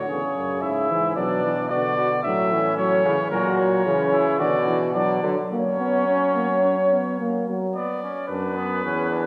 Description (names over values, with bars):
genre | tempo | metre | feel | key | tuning
classical, imitative canzona for brass ensemble | 110 BPM | 4/4 | straight | B minor from 3.3 s | A4 = 444 Hz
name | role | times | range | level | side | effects
warm trumpet | melody | 0.0-9.3 s | A#4 to E5 | -28 LUFS | equal | none
warm flugelhorn | second line | 0.0-9.2 s | B3 to G#4 | -30 LUFS | equal | none
warm euphonium | accompaniment | 0.0-7.8 s | C#3 to C#4 | -28 LUFS | equal | none
bright bass trombone | bass | 0.0-9.3 s | E2 to F#3 | -27 LUFS | equal | none
room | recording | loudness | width
wet concert hall reverb, RT60 2.2 s | recorded in a church or concert hall | -22 LUFS | mono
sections
0.0-7.8 A section; 7.8-9.3 B section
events
none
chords
0.1 C#m/E; 1.2 Bm; 2.2 A; 3.3 F#/A#; 4.4 Bm; 5.5 F#; 7.8 Bm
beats
0.09 0.63 | 1.17 1.70 2.25 2.78 | 3.31 3.85 4.40 4.95 | 5.51 6.07 6.63 7.19 | 7.75 8.30 8.84